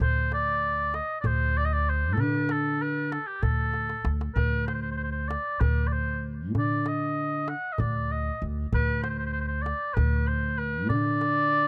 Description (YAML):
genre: Turkish makam ensemble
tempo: 193 BPM (eighths)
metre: 7/8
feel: straight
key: D makam hicaz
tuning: A4 = 440 Hz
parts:
  - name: warm oboe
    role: melody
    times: 0.0-11.7 s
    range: G4 to F#5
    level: -31 LUFS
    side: equal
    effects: none
  - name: upright bass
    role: bass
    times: 0.0-11.7 s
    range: D2 to D3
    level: -30 LUFS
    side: equal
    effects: none
  - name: darbuka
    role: percussion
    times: 0.0-11.6 s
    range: none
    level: -34 LUFS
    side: equal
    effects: none
room: little or no reverb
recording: dry, close 1970s-style studio recording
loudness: -27 LUFS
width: mono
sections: 0.0-11.7 A section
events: drum fill 3.7-4.4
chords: none